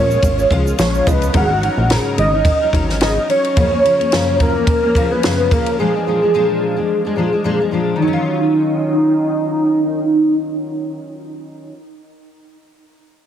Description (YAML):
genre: indie pop, bedroom pop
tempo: 108 BPM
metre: 4/4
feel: swing 55% on 16ths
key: Eb minor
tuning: A4 = 440 Hz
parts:
  - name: soft octave-layered synth lead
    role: melody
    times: 0.0-11.0 s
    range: Eb4 to Gb5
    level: -16 LUFS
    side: right 1 dB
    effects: phaser, ensemble chorus, tape echo
  - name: kalimba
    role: second line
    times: 0.0-1.2 s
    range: Bb4 to Eb5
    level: -28 LUFS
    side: right 4 dB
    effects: ensemble chorus, tape echo
  - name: fingerpicked steel-string acoustic guitar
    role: accompaniment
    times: 0.0-11.8 s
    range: Gb2 to Bb4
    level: -20 LUFS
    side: left 2 dB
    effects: analog chorus, vibrato effect
  - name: plucky analog bass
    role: bass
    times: 0.0-3.2 s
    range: Ab1 to Db2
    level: -18 LUFS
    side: equal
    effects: none
  - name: egg shaker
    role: percussion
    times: 0.1-1.3 s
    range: none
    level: -36 LUFS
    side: right 8 dB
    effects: none
  - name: compact cocktail drum kit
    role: drums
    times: 0.2-5.8 s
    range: kick drum, ride cymbal, snare drum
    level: -19 LUFS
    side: equal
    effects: none
room: light reverb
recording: heavily compressed radio sound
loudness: -13 LUFS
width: side -9 dB against mid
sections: 0.0-8.0 A section; 8.0-10.2 B section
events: none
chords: 0.0 Bbm7; 1.3 Ab9sus4; 3.6 Gbmaj7; 5.8 Bb7; 8.0 Ebm9